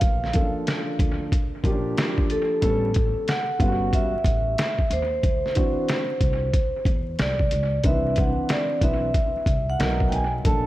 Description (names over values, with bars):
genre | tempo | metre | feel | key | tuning
hip hop, jazz-hop | 92 BPM | 4/4 | swing 64% on 16ths | unclear | A4 = 439 Hz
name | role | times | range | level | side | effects
vibraphone with medium mallets | melody | 0.0-10.7 s | A4 to A5 | -26 LUFS | right 1 dB | analog delay
upright bass | bass | 0.0-10.7 s | G1 to E2 | -28 LUFS | equal | none
trip hop sampler-style drum kit | drums | 0.0-10.6 s | hi-hat, kick drum, snare drum | -23 LUFS | equal | none
dark baby grand piano | accompaniment | 0.3-10.7 s | Eb3 to B4 | -28 LUFS | equal | analog delay
room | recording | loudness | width
light reverb, studio ambience | echo-heavy mix, vinyl crackle | -20 LUFS | side -16 dB against mid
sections
0.0-10.7 A section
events
none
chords
0.0 Bbmaj7; 2.6 A9; 5.2 D9; 7.8 Cmaj9; 9.8 Bmaj7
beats
| 0.01 0.67 1.32 1.97 | 2.62 3.27 3.93 4.58 | 5.23 5.88 6.54 7.19 | 7.84 8.49 9.14 9.80 | 10.45